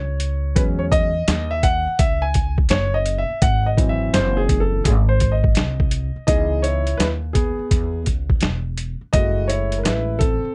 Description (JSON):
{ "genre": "hip hop, jazz-hop", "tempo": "84 BPM", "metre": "4/4", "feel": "swing 66% on 16ths", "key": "C# minor", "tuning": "A4 = 441 Hz", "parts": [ { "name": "dark grand piano", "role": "accompaniment", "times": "0.0-10.5 s", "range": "E3 to G#5", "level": "-25 LUFS", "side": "equal", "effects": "none" }, { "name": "upright bass", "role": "bass", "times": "0.0-10.5 s", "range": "E1 to E2", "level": "-24 LUFS", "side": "equal", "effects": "none" }, { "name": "boom bap sampler-style drum kit", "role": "drums", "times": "0.2-10.4 s", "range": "hi-hat, kick drum, snare drum", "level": "-22 LUFS", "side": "equal", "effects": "none" } ], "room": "little or no reverb", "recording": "nothing above 10.8 kHz", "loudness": "-20 LUFS", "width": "mono", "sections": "0.0-6.3 A section; 6.3-10.5 B section", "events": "grand piano solo 0.0-6.3, 6.3-10.5", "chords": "0.0 N.C.; 0.6 E6; 3.4 G#7b13; 6.3 C#m7; 9.1 F#m7", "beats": "| 0.56 1.28 1.99 2.71 | 3.42 4.14 4.85 5.57 | 6.28 6.99 7.71 8.42 | 9.14 9.85" }